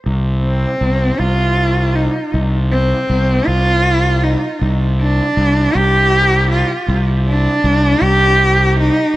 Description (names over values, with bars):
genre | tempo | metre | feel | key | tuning
post-rock | 53 BPM (dotted quarters) | 6/8 | straight | C minor | A4 = 439 Hz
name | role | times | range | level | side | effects
fuzz fingered electric bass | bass | 0.1-8.9 s | C2 | -15 LUFS | equal | overdrive
warm cello | melody | 0.4-9.2 s | C4 to G4 | -15 LUFS | equal | digital delay
room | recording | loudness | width
light reverb, small room ambience | none | -12 LUFS | side -16 dB against mid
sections
0.1-9.2 A section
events
build-up 0.1-9.2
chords
0.1 Csus4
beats
| 0.06 1.20 | 2.34 3.48 | 4.61 5.75 | 6.88 8.02 | 9.15